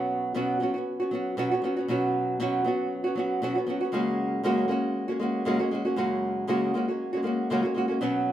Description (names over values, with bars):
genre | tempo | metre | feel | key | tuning
pop | 118 BPM | 4/4 | swing 55% on 16ths | F# major | A4 = 440 Hz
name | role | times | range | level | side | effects
nylon-string guitar | solo | 0.0-8.3 s | F#2 to F#4 | -25 LUFS | equal | none
room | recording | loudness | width
moderate plate reverb, RT60 3.1 s | minimal, uncompressed stereo recording | -25 LUFS | side -11 dB against mid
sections
0.0-8.3 A section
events
none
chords
0.0 Bsus2; 3.9 F#add9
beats
0.37 0.88 1.39 | 1.90 2.41 2.92 3.43 | 3.94 4.45 4.96 5.46 | 5.97 6.49 7.00 7.50 | 8.01